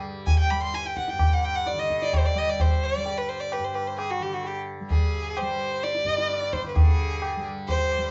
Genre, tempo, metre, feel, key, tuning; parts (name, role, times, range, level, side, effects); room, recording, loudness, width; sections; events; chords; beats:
indian classical, Hindustani; 130 BPM; 4/4; straight; A4 = 438 Hz
tanpura; drone; 0.0-8.1 s; G2 to G3; -38 LUFS; equal
clear violin; melody; 0.3-8.1 s; F#4 to C6; -29 LUFS; equal; slapback echo
tabla; percussion; 0.3-8.1 s; -27 LUFS; equal
wet studio reverb, RT60 0.6 s; heard from further back in the room, nothing above 7.8 kHz; -25 LUFS; mono
0.0-6.8 A section; 6.8-8.1 B section
0.27 0.74 | 1.20 1.67 2.13 2.59 | 3.06 3.52 3.98 4.45 | 4.91 5.37 5.83 6.30 | 6.76 7.22 7.68